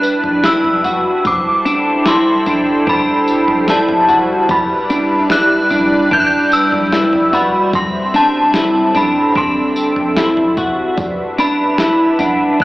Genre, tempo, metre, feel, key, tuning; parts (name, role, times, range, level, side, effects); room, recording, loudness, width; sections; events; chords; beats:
dream pop; 74 BPM; 4/4; straight; E minor; A4 = 439 Hz
synth chime; melody; 0.0-12.6 s; A5 to G6; -16 LUFS; equal; ensemble chorus, phaser, tremolo, tape echo, shimmer reverb
phased analog pad; sustained chords; 0.0-12.6 s; G3 to E5; -19 LUFS; equal; phaser, chorus, shimmer reverb
clean electric guitar; arpeggios; 0.0-12.6 s; D4 to F#4; -15 LUFS; equal; analog chorus, tape echo, shimmer reverb
clean 12-bit digital drum machine; drums; 0.0-12.6 s; kick drum, snare drum, tambourine, toms; -22 LUFS; equal
large celesta; texture; 0.0-12.6 s; B4 to F#5; -28 LUFS; right 2 dB; tape echo, shimmer reverb
wet spring reverb, RT60 2.6 s; played on a big sound system in a bare room, large studio reverb, AM radio sound; -11 LUFS; side -18 dB against mid
0.0-12.6 A section
0.0 Em7; 1.2 Am7; 4.5 Em7; 7.7 Am7; 11.0 Em7
0.44 | 1.25 2.06 2.87 3.68 | 4.49 5.30 6.11 6.92 | 7.73 8.54 9.36 10.17 | 10.98 11.79 12.60